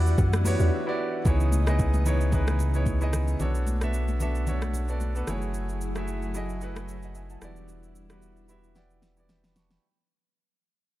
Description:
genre	amapiano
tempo	112 BPM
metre	4/4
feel	swing 55% on 16ths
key	unclear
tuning	A4 = 439 Hz
part	warm grand piano	accompaniment	0.0-10.0 s	A3 to C#6	-32 LUFS	right 1 dB	none
part	ensemble organ-string	sustained chords	0.0-9.8 s	C#3 to F#5	-36 LUFS	equal	ensemble chorus, sidechain pumping
part	deep mellow chord stab	stabs	0.0-0.7 s	G4 to F#5	-38 LUFS	equal	chorus, tape echo
part	deep log drum bass	bass	0.0-0.7 s	E2 to F#2	-22 LUFS	equal	none
part	smooth R&B drum kit	drums	0.1-9.8 s	hi-hat, kick drum, rim click, shaker, snare drum	-29 LUFS	equal	overdrive
part	congas	percussion	0.2-5.4 s	none	-35 LUFS	left 2 dB	none
part	warm sub bass	bass	1.3-9.8 s	E1 to C#2	-27 LUFS	equal	none
room	digital ambience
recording	none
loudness	-24 LUFS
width	side -15 dB against mid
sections	0.0-1.3 A section; 1.3-9.8 B section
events	drop 0.0-1.3; break 0.7-1.3; fade-out 1.3-9.8; grand piano fill 8.2-9.8; drum fill 8.8-9.8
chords	0.0 Em9; 1.3 C#m9; 3.4 Bm9; 5.3 F#m9; 7.4 Em9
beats	0.18 0.72 | 1.25 1.79 2.33 2.86 | 3.40 3.93 4.47 5.00 | 5.54 6.08 6.61 7.15 | 7.68 8.22 8.76 9.29

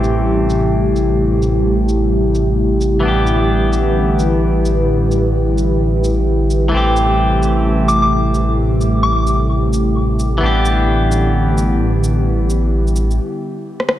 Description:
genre	future garage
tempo	130 BPM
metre	4/4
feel	swing 63% on 16ths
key	A minor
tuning	A4 = 440 Hz
part	clean electric guitar	accompaniment	0.0-13.2 s	E3 to G4	-20 LUFS	left 2 dB	low-pass filter, dub echo
part	airy breathy pad	sustained chords	0.0-13.2 s	C3 to B4	-18 LUFS	equal	chorus
part	swelling detuned saw bass	bass	0.0-13.2 s	A1	-16 LUFS	equal	tube saturation
part	electronic shaker and rim click	drums	0.0-14.0 s	none	-23 LUFS	equal	overdrive, low-pass filter on perc, low-pass filter on snare
part	soft synth bell	melody	7.9-9.5 s	D6	-20 LUFS	left 2 dB	chorus, vintage 12-bit sampler grit, dub echo
room	moderate digital room reverb, RT60 1.0 s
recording	none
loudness	-13 LUFS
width	side -12 dB against mid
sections	0.0-14.0 A section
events	filter sweep on analog synth pad 0.0-14.0; break 13.2-14.0; drum fill 13.8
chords	0.0 Am7; 3.0 Em7/A; 6.7 Am7; 10.4 Em7/A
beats	0.27 0.73 | 1.19 1.66 2.12 2.58 | 3.04 3.50 3.96 4.42 | 4.88 5.35 5.81 6.27 | 6.73 7.19 7.66 8.12 | 8.58 9.04 9.50 9.96 | 10.42 10.88 11.35 11.81 | 12.27 12.73 13.19 13.65

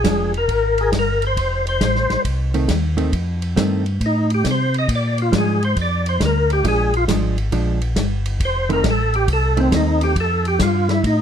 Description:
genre	soul jazz organ trio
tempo	137 BPM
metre	4/4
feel	swing 66% on 8ths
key	unclear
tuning	A4 = 440 Hz
part	percussive tonewheel organ	melody	0.0-11.2 s	C4 to Eb5	-20 LUFS	left 1 dB	slow rotary speaker, overdrive, chorus vibrato, plate reverb
part	hollow-body jazz guitar	accompaniment	0.0-10.1 s	Eb3 to D4	-22 LUFS	right 3 dB	none
part	mellow tonewheel organ	bass	0.0-11.2 s	F1 to C3	-20 LUFS	equal	overdrive, chorus vibrato, slow rotary speaker
part	warm soul drum kit	drums	0.0-11.2 s	hi-hat, kick drum, ride cymbal, snare drum	-24 LUFS	equal	none
room	light reverb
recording	dark, warm production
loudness	-16 LUFS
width	side -8 dB against mid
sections	0.0-11.2 A section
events	tonewheel organ solo 0.0-11.2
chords	0.0 Bb7; 1.4 F7; 4.9 Bb7; 8.4 F7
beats	0.06 0.50 0.94 | 1.38 1.81 2.25 2.69 | 3.13 3.57 4.01 4.45 | 4.89 5.33 5.77 6.21 | 6.65 7.08 7.52 7.96 | 8.40 8.84 9.28 9.72 | 10.16 10.60 11.04

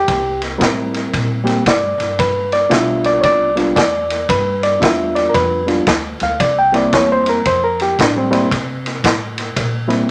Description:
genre	electric blues shuffle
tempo	114 BPM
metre	4/4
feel	swing 64% on 8ths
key	unclear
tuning	A4 = 440 Hz
part	overdriven reed electric piano	accompaniment	0.0-10.1 s	G3 to G5	-17 LUFS	equal	none
part	upright bass	bass	0.1-10.0 s	G1 to C3	-28 LUFS	equal	none
part	vintage drum kit	drums	0.1-10.0 s	kick drum, ride cymbal, snare drum	-21 LUFS	equal	none
room	moderate studio reverb, RT60 0.7 s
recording	none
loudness	-16 LUFS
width	mono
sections	0.0-10.1 A section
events	none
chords	0.1 C7; 2.2 G7; 6.4 C7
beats	| 0.08 0.60 1.13 1.66 | 2.18 2.71 3.23 3.76 | 4.29 4.81 5.34 5.87 | 6.39 6.92 7.45 7.98 | 8.50 9.03 9.56 10.08

